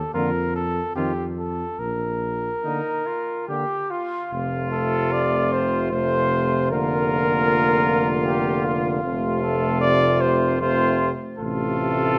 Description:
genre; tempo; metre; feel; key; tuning
classical, brass quintet; 71-78 BPM; 3/4; rubato; Bb major, F major from 4.3 s; A4 = 440 Hz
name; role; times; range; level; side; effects
warm cornet; melody; 0.0-12.2 s; F4 to D5; -26 LUFS; equal; none
clear trumpet; second line; 0.1-12.2 s; Eb4 to G4; -31 LUFS; equal; none
mellow French horn; accompaniment; 0.1-12.2 s; A3 to C4; -31 LUFS; equal; none
mellow euphonium; accompaniment; 0.1-12.2 s; C3 to Eb3; -29 LUFS; equal; none
warm tuba; bass; 0.1-12.2 s; F1 to F2; -30 LUFS; equal; none
room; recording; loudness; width
moderate concert hall reverb, RT60 1.9 s; none; -22 LUFS; mono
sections
0.0-4.3 A section; 4.3-12.2 B section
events
none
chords
0.1 Bb/F; 1.0 F7; 1.8 Bb; 4.3 F; 6.7 Bb/F; 9.0 F; 11.4 F/A

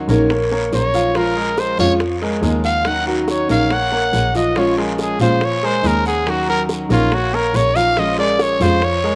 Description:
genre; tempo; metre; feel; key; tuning
latin, Cuban son and guajira; 141 BPM; 4/4; straight; Bb minor; A4 = 441 Hz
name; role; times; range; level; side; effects
picked steel-string acoustic guitar; accompaniment; 0.0-8.9 s; Eb3 to Bb4; -26 LUFS; equal; none
clear double bass; bass; 0.0-9.2 s; Bb1 to Bb2; -24 LUFS; equal; none
clear grand piano; arpeggios; 0.1-9.2 s; F3 to Gb5; -23 LUFS; equal; none
bongos; percussion; 0.1-9.2 s; none; -28 LUFS; equal; none
guiro; percussion; 0.1-9.2 s; none; -34 LUFS; equal; none
growling trumpet; melody; 0.7-9.2 s; F4 to Gb5; -21 LUFS; equal; cassette tape
room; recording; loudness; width
moderate spring reverb, RT60 2.7 s; home recording on cassette; -17 LUFS; mono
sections
0.0-9.2 A section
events
trumpet solo 0.0-9.2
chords
0.0 Ebm7; 1.2 Bbm7; 2.9 Ebm7; 4.6 Bbm7; 6.3 Ebm7; 8.0 Bbm7

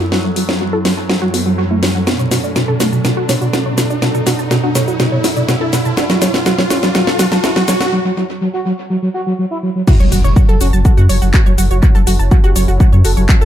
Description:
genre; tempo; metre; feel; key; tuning
melodic techno; 123 BPM; 4/4; straight; F# minor; A4 = 440 Hz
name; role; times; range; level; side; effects
expressive synth lead; melody; 0.0-13.4 s; B2 to A4; -18 LUFS; right 1 dB; chorus, sidechain pumping, dub echo
warm analog pad; sustained chords; 0.0-13.4 s; F#2 to A4; -23 LUFS; right 1 dB; chorus, sidechain pumping
wide unison pluck; arpeggios; 0.0-13.4 s; E4 to A6; -22 LUFS; right 1 dB; vintage 12-bit sampler grit, sidechain pumping, dub echo
overtone-sweeping drone; drone; 0.0-7.9 s; F#2 to F#3; -29 LUFS; left 1 dB; chorus, built-in reverb, sidechain pumping
riser and impact; sound effects; 0.1-11.8 s; none; -22 LUFS; equal; none
house drum kit; drums; 0.1-13.4 s; crash cymbal, handclaps, hi-hat, shaker, snare drum; -18 LUFS; left 1 dB; dub echo
electronic kick drum; drums; 9.9-13.4 s; none; -10 LUFS; equal; none
round analog bass; bass; 10.0-13.4 s; F#1 to F#2; -12 LUFS; equal; sidechain pumping
room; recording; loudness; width
moderate spring reverb, RT60 1.7 s; echo-heavy mix; -11 LUFS; side -11 dB against mid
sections
0.0-9.9 A section; 9.9-13.4 B section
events
build-up 0.0-9.9; drum fill 0.0-7.9; filter sweep on synth arpeggio sound 0.0-9.9; filter sweep on analog synth lead 0.0-9.9; riser 0.1-7.9; break 7.9-9.9; drop 9.9-13.4; impact 9.9-11.8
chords
0.0 F#m7; 2.1 Bm7; 9.9 F#m7

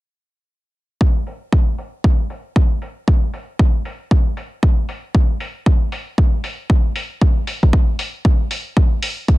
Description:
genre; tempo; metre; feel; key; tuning
deep house; 116 BPM; 4/4; swing 60% on 16ths; none; none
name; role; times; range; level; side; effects
electronic kick drum; drums; 1.0-9.4 s; none; -14 LUFS; equal; overdrive
electronic hi-hat; drums; 1.3-9.4 s; none; -27 LUFS; left 1 dB; overdrive, low-pass filter on hats, low-pass filter on room
room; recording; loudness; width
little or no reverb; dense, heavily limited modern master; -16 LUFS; side -19 dB against mid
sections
1.0-9.4 A section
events
filter sweep on drum 1.0-9.4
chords
none

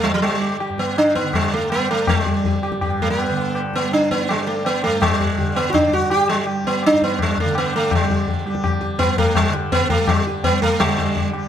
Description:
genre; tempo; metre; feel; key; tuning
indian classical, Hindustani; 165 BPM; 4/4; straight; G raga hamsadhwani; A4 = 440 Hz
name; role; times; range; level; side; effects
sitar; melody; 0.0-11.5 s; F#3 to G4; -19 LUFS; right 1 dB; none
tanpura; drone; 0.0-11.5 s; G2 to G3; -25 LUFS; right 2 dB; none
tabla; percussion; 0.1-11.5 s; none; -22 LUFS; left 4 dB; none
room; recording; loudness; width
light reverb; close, detailed microphones; -17 LUFS; side -9 dB against mid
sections
0.0-10.8 A section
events
speeding up 0.0-11.5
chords
none

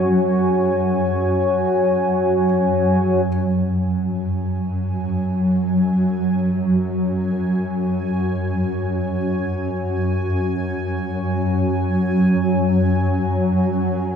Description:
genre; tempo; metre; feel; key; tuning
dark ambient drone; free time; none; none; unclear; A4 = 439 Hz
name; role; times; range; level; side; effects
deep dark ambient pad; sustained chords; 0.0-14.2 s; F#4 to G#5; -24 LUFS; left 1 dB; chorus, built-in reverb
clear grand piano; arpeggios; 0.0-3.3 s; F#4; -53 LUFS; left 1 dB; none
swarming drone; drone; 0.0-14.2 s; F#2 to F#3; -19 LUFS; equal; built-in reverb
bubbling stepped-filter texture; texture; 0.0-14.2 s; G#5; -34 LUFS; right 1 dB; chorus, built-in reverb
room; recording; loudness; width
wet echo chamber reverb, RT60 2.2 s; echo-heavy mix; -18 LUFS; side -7 dB against mid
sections
0.0-3.3 A section; 3.3-14.2 B section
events
fade-in on ambient pad 3.3-14.2; fade-in on synth texture 3.3-14.2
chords
0.0 F#sus2

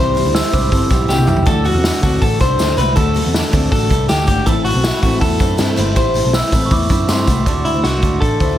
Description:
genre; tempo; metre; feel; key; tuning
jangly indie pop; 160 BPM; 4/4; straight; unclear; A4 = 440 Hz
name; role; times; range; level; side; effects
electric guitar through a small old amp; melody; 0.0-8.6 s; E4 to C5; -19 LUFS; left 1 dB; plate reverb
picked steel-string acoustic guitar; accompaniment; 0.0-8.6 s; A2 to B4; -23 LUFS; right 6 dB; plate reverb
electric guitar through a small old amp; arpeggios; 0.0-8.6 s; G3 to D5; -23 LUFS; left 6 dB; plate reverb, digital delay
vintage muted picked electric bass; bass; 0.0-8.6 s; G1 to G2; -19 LUFS; equal; none
raw garage drum kit; drums; 0.2-8.5 s; hi-hat, kick drum, snare drum, toms; -17 LUFS; equal; none
tambourine; percussion; 0.2-7.4 s; none; -32 LUFS; left 4 dB; none
glockenspiel with rubber mallets; second line; 0.3-1.0, 6.3-7.4 s; C6 to E6; -26 LUFS; right 3 dB; none
room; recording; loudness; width
light reverb; none; -12 LUFS; side -12 dB against mid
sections
0.0-7.5 A section; 7.5-8.6 B section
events
drum fill 1.1-1.5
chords
0.0 Amadd9; 7.5 D

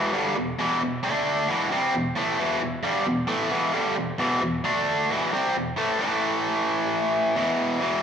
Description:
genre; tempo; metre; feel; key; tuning
rock; 133 BPM; 4/4; straight; E minor; A4 = 440 Hz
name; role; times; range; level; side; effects
biting overdriven guitar; solo; 0.0-8.0 s; E2 to D4; -22 LUFS; equal; spring reverb
room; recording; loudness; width
wet large studio reverb, RT60 1.3 s; band playing live in one room; -22 LUFS; side -7 dB against mid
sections
0.0-7.8 A section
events
none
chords
0.0 Em; 1.0 D5; 1.5 Em; 4.6 D5; 5.1 Em; 6.0 A5; 7.4 E5

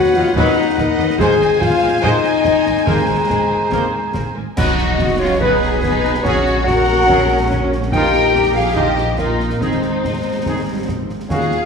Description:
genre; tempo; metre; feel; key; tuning
cinematic, heroic adventure film score; 143 BPM; 4/4; straight; Ab major; A4 = 440 Hz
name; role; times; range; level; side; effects
warm symphonic violin section; melody; 0.0-11.7 s; D#4 to Ab5; -24 LUFS; left 3 dB; none
bright oboe; second line; 0.0-4.3 s; B4 to C5; -28 LUFS; right 3 dB; none
mellow clarinet; second line; 0.0-11.7 s; Ab4 to G5; -23 LUFS; left 1 dB; none
mellow concert flute; second line; 0.0-11.7 s; Bb4 to Bb5; -25 LUFS; equal; none
warm symphonic violin section; second line; 0.0-11.7 s; Ab4 to Ab5; -28 LUFS; left 2 dB; none
rich symphonic viola section; accompaniment; 0.0-11.7 s; D#3 to D#5; -27 LUFS; right 1 dB; none
mellow French horn section; sustained chords; 0.0-11.7 s; Ab3 to Ab4; -19 LUFS; left 5 dB; none
rich symphonic cello section; bass; 0.0-11.7 s; D#2 to Ab4; -25 LUFS; right 2 dB; none
timpani; percussion; 0.0-3.5, 11.3-11.7 s; Ab2 to D#3; -26 LUFS; equal; none
rich symphonic double bass section; bass; 0.1-11.7 s; Ab1 to D#2; -23 LUFS; right 2 dB; none
bright trombone section; sustained chords; 0.4-11.4 s; Eb3 to Eb4; -26 LUFS; right 3 dB; none
bright trumpet section; stabs; 0.4-11.4 s; F4 to C5; -28 LUFS; equal; none
concert snare drum, concert bass drum and clash cymbals; drums; 0.4-11.6 s; none; -25 LUFS; equal; none
clash cymbals and concert bass drum; percussion; 4.6-5.4 s; none; -25 LUFS; equal; none
room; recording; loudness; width
wet scoring stage reverb, RT60 1.6 s; studio reverb; -14 LUFS; side -5 dB against mid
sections
0.0-4.6 A section; 4.6-11.7 B section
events
band accent 4.6-5.0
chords
0.0 B/D#; 1.2 Ab; 2.9 Abadd9; 4.6 B; 6.3 Gbadd9/Bb; 7.9 Ebadd9/Bb; 9.6 Ab

